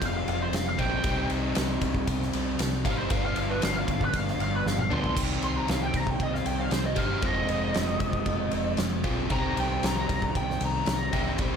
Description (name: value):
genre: blues rock power trio and southern rock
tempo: 116 BPM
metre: 4/4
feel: straight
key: C minor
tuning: A4 = 440 Hz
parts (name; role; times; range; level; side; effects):
- lead guitar through a small cranked amp; melody; 0.0-11.6 s; B4 to C6; -31 LUFS; equal; wah, overdrive, slapback echo
- crunchy overdriven guitar; riff; 0.0-11.6 s; F2 to G4; -30 LUFS; equal; none
- vintage muted fingered electric bass; bass; 0.0-11.6 s; F1 to G2; -33 LUFS; equal; none
- oversized low-tuned drum kit; drums; 0.0-11.5 s; crash cymbal, kick drum, ride cymbal, snare drum, toms; -30 LUFS; equal; none
room: light reverb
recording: none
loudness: -25 LUFS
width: side -7 dB against mid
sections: 0.0-5.2 A section; 5.2-11.6 A section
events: lead electric guitar solo 0.0-11.6; drum fill 4.7-5.2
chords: 0.0 Fm; 1.1 Cm; 3.1 G7; 5.2 Cm; 7.2 Fm7; 9.3 Cm7